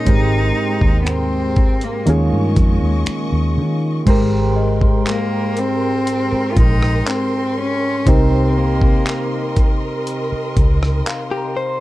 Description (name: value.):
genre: contemporary R&B.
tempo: 60 BPM.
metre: 4/4.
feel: straight.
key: Ab major.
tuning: A4 = 442 Hz.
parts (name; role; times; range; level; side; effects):
bright cello; melody; 0.0-9.6 s; Ab3 to F4; -22 LUFS; left 1 dB; analog delay.
soft electric-piano-like synth keys; accompaniment; 0.0-11.8 s; Ab2 to C5; -20 LUFS; equal; chorus, tremolo.
warm studio string section; sustained chords; 0.0-11.8 s; Ab3 to Db6; -28 LUFS; equal; none.
vintage muted fingered electric bass; bass; 0.1-11.0 s; Ab1 to Eb3; -18 LUFS; equal; none.
dusty soul sampler-style drum kit; drums; 0.1-11.3 s; crash cymbal, finger snaps, handclaps, hi-hat, kick drum, rim click; -16 LUFS; equal; none.
celesta; texture; 4.6-11.8 s; Eb5 to C6; -32 LUFS; right 1 dB; analog delay.
direct-recorded clean electric guitar; arpeggios; 11.3-11.8 s; G4 to C5; -21 LUFS; left 4 dB; none.
room: light reverb.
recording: dark, warm production.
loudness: -14 LUFS.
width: side -16 dB against mid.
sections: 0.0-4.1 A section; 4.1-11.8 B section.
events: none.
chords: 0.1 Abmaj7; 2.1 Eb7sus4; 4.1 Abmaj9; 8.1 Cm7.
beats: | 0.07 1.07 2.07 3.07 | 4.07 5.07 6.07 7.07 | 8.07 9.07 10.07 11.07.